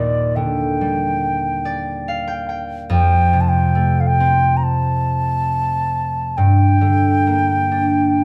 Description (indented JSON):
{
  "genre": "celtic folk, Celtic slow air",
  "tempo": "64-72 BPM",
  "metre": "4/4",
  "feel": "rubato",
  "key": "unclear",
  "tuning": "A4 = 440 Hz",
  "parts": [
    { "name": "baroque flute", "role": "melody", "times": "0.0-8.2 s", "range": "D5 to Bb5", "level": "-21 LUFS", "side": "equal", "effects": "none" },
    { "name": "concert harp", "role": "accompaniment", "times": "0.0-8.2 s", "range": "Eb2 to G5", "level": "-19 LUFS", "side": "equal", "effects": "none" }
  ],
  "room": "wet stone room reverb, RT60 0.9 s",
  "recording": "band playing live in one room",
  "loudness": "-17 LUFS",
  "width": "mono",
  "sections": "0.0-8.2 A section",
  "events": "harp fill 1.2-2.9",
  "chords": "0.0 Ebmaj7; 2.9 F; 6.4 Gm",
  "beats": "0.36 1.21 2.06 | 2.90 3.75 4.64 5.51 | 6.38 7.27 8.20"
}